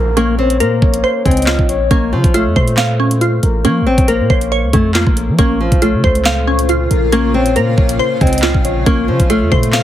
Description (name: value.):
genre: hip hop, drill.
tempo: 138 BPM.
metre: 4/4.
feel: half-time.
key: Bb harmonic minor.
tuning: A4 = 437 Hz.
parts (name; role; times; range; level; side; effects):
nylon-string guitar; melody; 0.0-9.8 s; F3 to C4; -17 LUFS; left 2 dB; tape echo.
soft octave-layered synth lead; second line; 0.0-9.8 s; Bb4 to Eb5; -22 LUFS; left 3 dB; chorus, phaser, tape echo.
glassy wavetable pluck; accompaniment; 0.0-9.8 s; Db3 to F5; -18 LUFS; right 1 dB; chorus.
hard-hitting 808-style bass; bass; 0.0-9.8 s; A1 to F3; -16 LUFS; equal; none.
downlifter; sound effects; 0.0-1.9 s; none; -36 LUFS; equal; none.
drill drum kit; drums; 0.2-9.8 s; handclaps, hi-hat, kick drum, rim click, snare drum; -15 LUFS; equal; none.
granular cloud pad; sustained chords; 6.2-9.8 s; Bb2 to F4; -22 LUFS; equal; built-in reverb.
room: light reverb.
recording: heavily compressed radio sound, multiband compression.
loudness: -11 LUFS.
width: side -12 dB against mid.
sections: 0.0-9.8 A section.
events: none.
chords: 0.0 Bbmadd9.